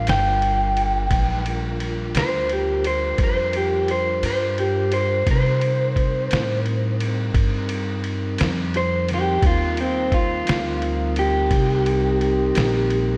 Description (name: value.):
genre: slow blues.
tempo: 58 BPM (dotted quarters).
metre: 12/8.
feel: straight.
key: unclear.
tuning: A4 = 438 Hz.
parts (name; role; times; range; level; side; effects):
electric guitar through a small old amp; melody; 0.0-13.2 s; C4 to G5; -24 LUFS; equal; slapback echo.
mellow tonewheel organ; sustained chords; 0.0-13.2 s; F#3 to B4; -31 LUFS; equal; slow rotary speaker.
upright bass; bass; 0.0-13.2 s; G1 to C3; -26 LUFS; equal; none.
lo-fi sampler-style drum kit; drums; 0.1-13.1 s; kick drum, ride cymbal, snare drum; -28 LUFS; equal; none.
room: moderate lush hall reverb, RT60 3.0 s.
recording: big arena sound.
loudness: -21 LUFS.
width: mono.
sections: 0.0-13.2 A section.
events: clean electric guitar solo 0.0-13.2; kick and snare drop out 4.2-5.3.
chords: 0.0 Gm7; 5.3 Cm7.